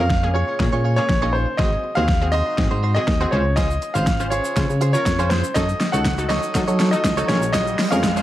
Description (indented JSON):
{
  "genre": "dance-pop",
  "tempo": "121 BPM",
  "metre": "4/4",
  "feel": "straight",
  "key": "Db major",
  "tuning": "A4 = 439 Hz",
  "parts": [
    { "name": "clear baby grand piano", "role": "melody", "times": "0.0-8.2 s", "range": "C5 to Gb5", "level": "-23 LUFS", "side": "equal", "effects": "tape echo" },
    { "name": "wide unison pluck", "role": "accompaniment", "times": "0.0-8.2 s", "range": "Bb3 to C5", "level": "-28 LUFS", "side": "left 1 dB", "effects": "none" },
    { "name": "direct-recorded clean electric guitar", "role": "riff", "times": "0.0-8.2 s", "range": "Eb4 to Db5", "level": "-28 LUFS", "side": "right 4 dB", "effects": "wide subtle chorus" },
    { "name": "solid FM bass", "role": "bass", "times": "0.0-8.2 s", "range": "Ab1 to Gb3", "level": "-21 LUFS", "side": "equal", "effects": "sidechain pumping" },
    { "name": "pop drum kit", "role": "drums", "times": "0.1-8.2 s", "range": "hi-hat, kick drum, shaker, snare drum", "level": "-22 LUFS", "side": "equal", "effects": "overdrive" },
    { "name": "tube shaker", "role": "percussion", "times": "5.6-8.2 s", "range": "none", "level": "-43 LUFS", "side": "left 7 dB", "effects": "none" },
    { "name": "riser", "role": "sound effects", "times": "7.0-8.2 s", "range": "none", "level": "-28 LUFS", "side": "right 1 dB", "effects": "none" }
  ],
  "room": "light reverb",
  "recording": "dark, warm production, high-pass filter",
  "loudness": "-17 LUFS",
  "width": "side -14 dB against mid",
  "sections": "0.0-8.2 A section",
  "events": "build-up 0.0-8.2; drum fill 0.0-8.2; filter sweep 0.0-8.2; riser 7.0-8.2",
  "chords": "0.0 Bbm7; 1.6 Ab7; 3.3 Dbmaj7; 5.6 Gbm6; 7.3 Bbm7",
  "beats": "0.10 0.60 1.09 | 1.59 2.09 2.58 3.08 | 3.57 4.07 4.57 5.06 | 5.56 6.05 6.55 7.04 | 7.54 8.04"
}